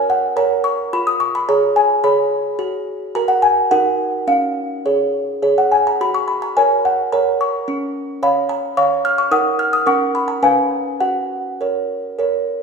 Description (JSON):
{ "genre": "classical, lullaby for music box", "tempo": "107 BPM", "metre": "3/4", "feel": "straight", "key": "F# major", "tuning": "A4 = 443 Hz", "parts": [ { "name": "music box", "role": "solo", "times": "0.0-12.6 s", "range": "C#4 to E#6", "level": "-15 LUFS", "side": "equal", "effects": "none" } ], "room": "moderate scoring stage reverb, RT60 2.0 s", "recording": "recorded in a church or concert hall", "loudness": "-15 LUFS", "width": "side -5 dB against mid", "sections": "0.0-12.6 A section", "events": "none", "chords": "0.0 F#; 0.9 C#7/E#; 2.6 F#; 3.7 D#m; 4.3 C#; 6.0 F#; 7.7 C#; 9.3 D#m; 9.9 F#/C#; 10.4 C#7; 11.0 F#", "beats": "0.37 | 0.93 1.48 2.03 | 2.59 3.14 3.71 | 4.28 4.85 5.42 | 6.00 6.56 7.12 | 7.67 8.22 8.77 | 9.31 9.87 10.43 | 11.01 11.60 12.18" }